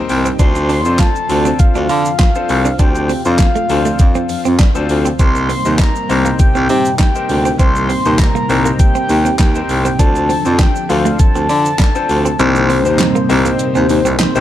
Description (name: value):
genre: dance-pop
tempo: 100 BPM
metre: 4/4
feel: straight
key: C dorian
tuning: A4 = 439 Hz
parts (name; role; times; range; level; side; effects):
- clear concert grand piano; accompaniment; 0.0-14.4 s; C4 to G5; -22 LUFS; left 5 dB; sidechain pumping
- string machine, cellos; sustained chords; 0.0-14.4 s; C3 to Eb4; -22 LUFS; equal; phaser, ensemble chorus, sidechain pumping
- warm baritone saxophone; bass; 0.1-14.4 s; C2 to D3; -16 LUFS; equal; sidechain pumping
- pop drum kit; drums; 0.1-14.4 s; handclaps, hi-hat, kick drum, shaker, snare drum; -14 LUFS; equal; overdrive
- direct-recorded clean electric guitar; riff; 0.3-14.4 s; A3 to F4; -23 LUFS; right 6 dB; lush chorus
- soft octave-layered synth lead; melody; 0.4-14.4 s; C5 to C6; -19 LUFS; left 1 dB; chorus, tape echo
room: digital ambience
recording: dark, warm production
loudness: -11 LUFS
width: side -12 dB against mid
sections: 0.0-14.4 A section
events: grand piano fill 0.0-0.4; kick muted 12.4-14.4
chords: 0.4 Dm7; 5.2 Cm7; 10.0 Dm7; 12.4 Cm7